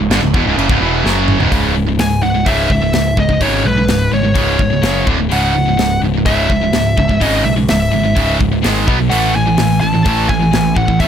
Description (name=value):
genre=heavy metal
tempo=127 BPM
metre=4/4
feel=straight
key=C# minor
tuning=A4 = 440 Hz
part: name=distorted electric guitar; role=riff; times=0.0-11.1 s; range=C#2 to B3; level=-17 LUFS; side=right 11 dB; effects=overdrive
part: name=high-gain distorted guitar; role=riff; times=0.0-11.1 s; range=C#2 to B3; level=-18 LUFS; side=left 11 dB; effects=distortion
part: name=growling picked electric bass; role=bass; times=0.0-11.1 s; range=C#1 to E2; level=-18 LUFS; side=equal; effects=overdrive
part: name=modern studio drum kit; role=drums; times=0.1-11.1 s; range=china cymbal, hi-hat, kick drum, snare drum, toms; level=-19 LUFS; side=equal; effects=none
part: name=high-gain lead guitar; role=melody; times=2.0-11.1 s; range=B4 to A5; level=-18 LUFS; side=left 1 dB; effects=distortion
room=light reverb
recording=none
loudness=-11 LUFS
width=side -9 dB against mid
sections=0.0-1.5 A section; 1.5-11.1 B section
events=drum fill 1.1-1.5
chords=0.0 C#m; 4.8 F#5; 5.1 D5; 5.3 C#m; 8.6 G#5; 8.9 B5; 9.1 A5